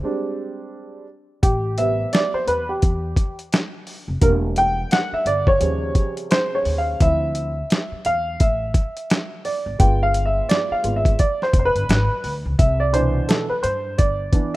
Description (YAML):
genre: hip hop, jazz-hop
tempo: 86 BPM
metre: 4/4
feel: swing 61% on 16ths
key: A minor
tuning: A4 = 436 Hz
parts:
  - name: warm upright piano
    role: accompaniment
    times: 0.0-14.6 s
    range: B2 to G5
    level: -21 LUFS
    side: right 1 dB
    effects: none
  - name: upright bass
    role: bass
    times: 1.4-14.3 s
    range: E1 to G2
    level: -24 LUFS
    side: equal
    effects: none
  - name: dusty soul sampler-style drum kit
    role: drums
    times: 1.4-14.5 s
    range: hi-hat, kick drum, snare drum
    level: -19 LUFS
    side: equal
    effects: none
room: little or no reverb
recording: rough home demo mix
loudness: -18 LUFS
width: side -18 dB against mid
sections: 0.0-1.4 A section; 1.4-14.6 A section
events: upright piano solo 0.0-1.4, 1.4-14.6; break 0.0-1.4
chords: 0.0 G#maj7#11/G; 1.4 Am9; 4.2 Em7b5; 5.6 D#13; 7.0 Dm9; 9.8 G7b9; 12.6 Cmaj7